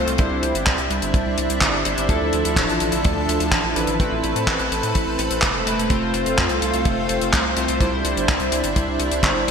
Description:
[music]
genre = italo disco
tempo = 126 BPM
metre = 4/4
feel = straight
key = unclear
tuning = A4 = 441 Hz
[part]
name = lush unison pad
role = sustained chords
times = 0.0-9.5 s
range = D3 to B4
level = -24 LUFS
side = right 1 dB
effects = chorus
[part]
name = chorused polysynth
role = stabs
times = 0.0-9.5 s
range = F3 to C5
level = -24 LUFS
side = left 1 dB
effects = digital delay
[part]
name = round analog bass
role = bass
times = 0.0-9.5 s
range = D1 to A2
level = -27 LUFS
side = equal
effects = none
[part]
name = damped 70s drum kit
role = drums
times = 0.1-9.5 s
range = handclaps, hi-hat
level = -23 LUFS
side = left 1 dB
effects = studio reverb, gated reverb
[part]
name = kick drum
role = drums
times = 0.2-9.3 s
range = none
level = -22 LUFS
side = equal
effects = studio reverb
[sound]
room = wet lush hall reverb, RT60 1.9 s, small room ambience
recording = bright 1980s-style digital production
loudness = -18 LUFS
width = side -6 dB against mid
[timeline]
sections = 0.0-9.5 A section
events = none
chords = 0.2 Cadd9; 2.1 Dmadd9; 4.0 Amadd9; 5.9 F; 7.8 Cadd9

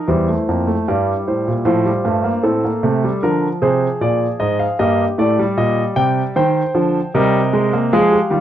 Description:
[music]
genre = classical, baroque-style 4-part fugue for grand piano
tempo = 76 BPM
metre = 4/4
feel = straight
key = unclear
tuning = A4 = 439 Hz
[part]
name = warm concert grand piano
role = solo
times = 0.0-8.4 s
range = E2 to G5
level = -14 LUFS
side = equal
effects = none
[sound]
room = light reverb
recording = worn, warbling old tape, cassette tape, warbly pitch drift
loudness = -14 LUFS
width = side -11 dB against mid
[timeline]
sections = 0.1-8.4 A section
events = none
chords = 0.1 C7/E; 1.7 F; 3.2 Bb7; 4.8 Eb/G; 6.4 Cm

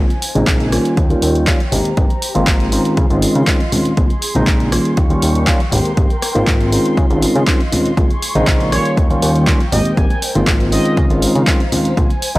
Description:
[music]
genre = filtered disco house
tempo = 120 BPM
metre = 4/4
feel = straight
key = unclear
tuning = A4 = 440 Hz
[part]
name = tine electric piano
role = accompaniment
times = 0.0-12.4 s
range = Db3 to G4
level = -17 LUFS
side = equal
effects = phaser, vintage 12-bit sampler grit, sidechain pumping, low-pass filter
[part]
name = dark studio violin section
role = sustained chords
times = 0.0-12.4 s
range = C4 to Db6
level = -26 LUFS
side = equal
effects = sidechain pumping, low-pass filter
[part]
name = fat analog bass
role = bass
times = 0.0-12.4 s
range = Ab1 to Db3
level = -18 LUFS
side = equal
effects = transformer saturation, sidechain pumping, low-pass filter
[part]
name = punchy analog drum machine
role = drums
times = 0.1-12.4 s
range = handclaps, hi-hat, rim click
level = -21 LUFS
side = equal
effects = overdrive, sidechain pumping on hats
[part]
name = tambourine and congas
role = percussion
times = 0.1-12.4 s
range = none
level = -25 LUFS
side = left 1 dB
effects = none
[part]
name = electronic kick drum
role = drums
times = 0.5-12.1 s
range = none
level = -15 LUFS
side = equal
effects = overdrive
[part]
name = analog synth brass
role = melody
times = 8.7-11.0 s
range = Db5 to Ab5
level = -24 LUFS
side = right 2 dB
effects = chorus, sidechain pumping, low-pass filter, analog delay
[sound]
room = digital ambience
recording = dry, gritty hardware recording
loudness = -12 LUFS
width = side -19 dB against mid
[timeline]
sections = 0.0-12.4 A section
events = filter sweep 0.0-12.4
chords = 0.0 Bbm9; 1.0 Eb9; 1.7 Abmaj9; 3.0 Dbmaj9; 4.0 Bbm9; 5.0 Eb9; 5.7 Abmaj9; 7.0 Dbmaj9; 8.0 Bbm9; 9.0 Eb9; 9.7 Abmaj9; 11.0 Dbmaj9

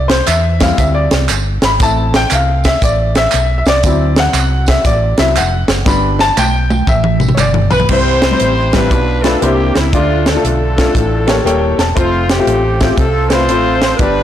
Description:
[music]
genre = uptempo gospel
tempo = 118 BPM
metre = 4/4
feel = swing 65% on 8ths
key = C major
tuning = A4 = 440 Hz
[part]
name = clear upright piano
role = accompaniment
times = 0.0-14.2 s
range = G2 to B5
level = -15 LUFS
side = left 3 dB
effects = none
[part]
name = hollow-body short-scale fingered electric bass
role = bass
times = 0.0-14.2 s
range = Eb1 to E2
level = -16 LUFS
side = equal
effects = tube saturation
[part]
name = tight funk drum kit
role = drums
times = 0.1-14.2 s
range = crash cymbal, hi-hat, kick drum, snare drum, toms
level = -16 LUFS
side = right 1 dB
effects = none
[part]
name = tambourine and handclaps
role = percussion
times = 0.1-7.8 s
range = none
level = -23 LUFS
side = right 7 dB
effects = none
[part]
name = breathy alto saxophone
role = melody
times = 7.7-14.2 s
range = E4 to C5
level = -19 LUFS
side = right 4 dB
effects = none
[part]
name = clear horn section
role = melody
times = 7.7-14.2 s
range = A3 to C5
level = -18 LUFS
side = left 2 dB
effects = tape echo
[sound]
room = light reverb, small room ambience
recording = blown-out, overdriven recording, overdrive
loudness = -10 LUFS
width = side -11 dB against mid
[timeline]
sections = 0.0-7.9 A section; 7.9-14.2 B section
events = upright piano solo 0.0-7.9; drum fill 5.9-7.9; upright piano fill 11.2-12.0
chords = 0.0 C; 1.8 Am; 3.8 D7; 5.9 G; 7.9 C; 8.9 Bm7b5; 9.4 C9; 9.9 Dm; 10.9 A7b9; 12.0 F

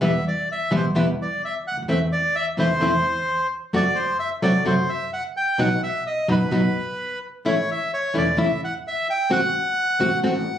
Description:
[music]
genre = tango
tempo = 129 BPM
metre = 4/4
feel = rubato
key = E minor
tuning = A4 = 440 Hz
[part]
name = bandoneon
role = melody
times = 0.0-10.6 s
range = B4 to G5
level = -23 LUFS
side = right 1 dB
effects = none
[part]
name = nylon-string guitar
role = accompaniment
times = 0.0-10.3 s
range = B2 to F#4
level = -22 LUFS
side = left 1 dB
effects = none
[part]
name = upright bass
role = bass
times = 0.0-10.4 s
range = E1 to E2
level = -28 LUFS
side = right 2 dB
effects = none
[sound]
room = moderate studio reverb, RT60 0.6 s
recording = recorded on a phone in the room, club reverb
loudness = -20 LUFS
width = side -10 dB against mid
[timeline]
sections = 0.0-10.6 A section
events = none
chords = 0.0 Em; 1.9 Am/E; 3.7 F#dim; 5.6 B; 7.4 A; 9.3 F#dim/A

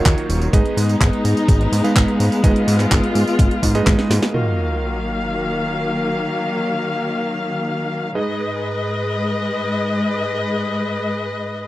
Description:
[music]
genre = italo disco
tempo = 126 BPM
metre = 4/4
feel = straight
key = Eb minor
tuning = A4 = 440 Hz
[part]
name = rich studio string section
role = sustained chords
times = 0.0-11.7 s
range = Ab2 to F5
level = -20 LUFS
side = left 2 dB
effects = none
[part]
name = warm electric grand piano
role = stabs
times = 0.0-11.7 s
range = Eb3 to F5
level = -25 LUFS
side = right 4 dB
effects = tape echo
[part]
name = fat analog bass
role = bass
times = 0.1-4.2 s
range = Eb1 to Ab2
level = -19 LUFS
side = equal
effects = none
[part]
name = electronic kick drum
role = drums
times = 0.1-4.0 s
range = none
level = -17 LUFS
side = equal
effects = none
[part]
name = house drum kit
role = drums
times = 0.1-4.3 s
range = handclaps, hi-hat, snare drum, tambourine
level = -23 LUFS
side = right 1 dB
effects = low-pass filter on hats, low-pass filter on perc, low-pass filter on snare, low-pass filter on room
[part]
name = sub drop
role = sound effects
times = 4.3-6.2 s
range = none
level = -26 LUFS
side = equal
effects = none
[sound]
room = light reverb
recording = dry, close 1970s-style studio recording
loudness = -16 LUFS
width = side -16 dB against mid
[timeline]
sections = 0.0-4.3 A section; 4.3-11.7 B section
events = drum fill 3.9-4.3; band accent 4.2; impact 4.3-6.2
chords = 0.0 Ebmadd9; 0.5 Abm; 4.3 Ebmadd9; 8.2 Abm

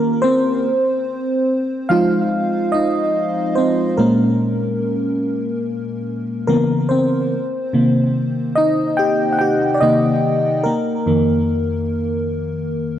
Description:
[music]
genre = R&B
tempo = 72 BPM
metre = 4/4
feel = swing 58% on 16ths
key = unclear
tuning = A4 = 440 Hz
[part]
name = FM electric piano with soft pad layer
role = solo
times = 0.0-13.0 s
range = F2 to G5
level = -16 LUFS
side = equal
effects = chorus, digital delay
[sound]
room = moderate lush hall reverb, RT60 2.7 s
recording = worn, warbling old tape, cassette tape, warbly pitch drift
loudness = -16 LUFS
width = side -11 dB against mid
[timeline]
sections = 0.6-13.0 A section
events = FM electric piano solo 0.6-13.0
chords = 0.0 Eb7; 0.6 Fm7; 4.0 Bbm7; 6.5 Dbm7; 7.3 Cm7; 10.6 F7sus4

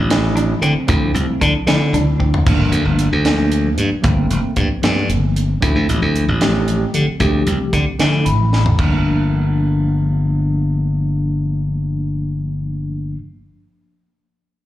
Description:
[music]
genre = electric jazz fusion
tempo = 76 BPM (dotted quarters)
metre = 6/8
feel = straight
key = G minor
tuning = A4 = 440 Hz
[part]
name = glassy slap bass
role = bass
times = 0.0-13.2 s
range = F1 to D3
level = -16 LUFS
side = equal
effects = none
[part]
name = tine electric piano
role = accompaniment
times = 0.1-13.2 s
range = F3 to B5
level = -21 LUFS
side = equal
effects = medium stereo tremolo, slapback echo
[part]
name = tight funk drum kit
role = drums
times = 0.1-8.9 s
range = crash cymbal, hi-hat, kick drum, snare drum, toms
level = -20 LUFS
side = equal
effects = none
[part]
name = clean electric guitar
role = stabs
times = 0.4-2.4 s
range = A3 to D4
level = -25 LUFS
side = equal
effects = lush chorus, slapback echo
[sound]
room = light reverb, small room ambience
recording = live gig heard through the venue's PA, club reverb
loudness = -14 LUFS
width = side -14 dB against mid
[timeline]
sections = 0.0-8.8 A section; 8.8-11.9 B section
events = drum fill 2.2, 8.5; tine electric piano fill 8.0-8.8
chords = 0.0 Dm9; 2.5 Gm9; 5.6 Dm9; 8.8 Gm9

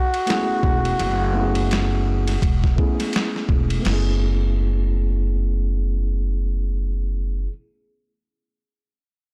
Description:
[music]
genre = hip hop, jazz-hop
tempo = 84 BPM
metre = 4/4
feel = swing 59% on 16ths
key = F# minor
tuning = A4 = 443 Hz
[part]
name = warm flugelhorn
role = melody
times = 0.0-3.1 s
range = F#4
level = -27 LUFS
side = equal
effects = slapback echo
[part]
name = boom bap sampler-style drum kit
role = drums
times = 0.1-4.1 s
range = crash cymbal, hi-hat, kick drum, ride cymbal, snare drum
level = -25 LUFS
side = equal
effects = none
[part]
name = tine electric piano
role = accompaniment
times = 0.3-7.5 s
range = A3 to G#4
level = -30 LUFS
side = equal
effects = none
[part]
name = upright bass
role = bass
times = 0.6-7.5 s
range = E1 to F#1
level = -24 LUFS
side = equal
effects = tube saturation
[sound]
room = digital ambience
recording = blown-out, overdriven recording, overdrive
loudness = -21 LUFS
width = mono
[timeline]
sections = 0.0-3.9 A section; 3.9-6.7 B section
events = none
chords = 0.0 F#m11

